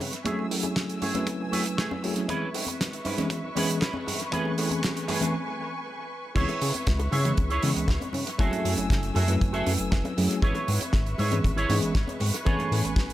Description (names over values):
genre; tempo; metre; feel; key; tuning
nu-disco, nu disco; 118 BPM; 4/4; straight; C# minor; A4 = 440 Hz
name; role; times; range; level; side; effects
dark studio string section; sustained chords; 0.0-13.1 s; A3 to E6; -36 LUFS; left 1 dB; sidechain pumping
electric guitar with an envelope filter; riff; 0.0-12.8 s; A3 to E5; -32 LUFS; right 2 dB; analog chorus, low-pass filter, dub echo
chorused synth bass; bass; 0.0-13.1 s; F#1 to C#3; -29 LUFS; equal; high-pass filter
damped 70s drum kit; drums; 0.0-13.1 s; crash cymbal, hi-hat, snare drum; -32 LUFS; right 2 dB; small room reverb, dub echo
congas and bongos; percussion; 0.0-12.9 s; none; -37 LUFS; left 3 dB; dub echo
mellow tine electric piano; accompaniment; 0.2-13.1 s; E3 to G#5; -30 LUFS; equal; medium stereo tremolo, sidechain pumping, dub echo
kick drum; drums; 0.3-13.1 s; none; -25 LUFS; equal; high-pass filter on kick, small room reverb, high-pass filter on snare, high-pass filter on room
room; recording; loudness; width
light reverb, small room ambience; echo-heavy mix; -24 LUFS; side -14 dB against mid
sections
0.0-6.4 A section; 6.4-13.1 B section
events
build-up 0.0-6.4; break 5.3-6.4; drop 6.4-13.1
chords
0.3 F#m9; 2.3 C#m7/G#; 4.3 Amaj9; 6.4 C#m7; 8.4 F#m9; 10.4 C#m7/G#; 12.5 Amaj9